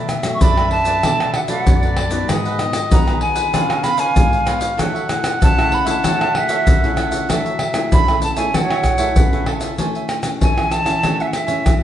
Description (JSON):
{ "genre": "samba and choro", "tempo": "96 BPM", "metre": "4/4", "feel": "straight", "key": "F# minor", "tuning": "A4 = 441 Hz", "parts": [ { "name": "warm clarinet", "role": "second line", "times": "0.0-9.8 s", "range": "A4 to F#5", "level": "-24 LUFS", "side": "left 1 dB", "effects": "none" }, { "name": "cavaquinho", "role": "accompaniment", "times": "0.0-11.8 s", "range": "D4 to G#5", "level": "-27 LUFS", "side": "right 6 dB", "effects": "none" }, { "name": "nylon-string guitar", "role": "accompaniment", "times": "0.0-11.8 s", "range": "F#2 to G#4", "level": "-24 LUFS", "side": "left 2 dB", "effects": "none" }, { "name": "egg shaker, pandeiro, tamborim and surdo", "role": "percussion", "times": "0.1-11.8 s", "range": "none", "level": "-17 LUFS", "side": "equal", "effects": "none" }, { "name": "silver concert flute", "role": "melody", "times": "0.3-11.8 s", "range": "E5 to C#6", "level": "-20 LUFS", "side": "right 2 dB", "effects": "plate reverb" } ], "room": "wet large studio reverb, RT60 0.9 s", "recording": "heard from further back in the room, nothing above 10.6 kHz", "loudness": "-15 LUFS", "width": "side -11 dB against mid", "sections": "0.0-9.8 A section; 9.8-11.8 B section", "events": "none", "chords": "0.0 Bm7; 2.3 G#m7; 3.5 C#7; 4.8 F#m9; 9.8 Amaj7" }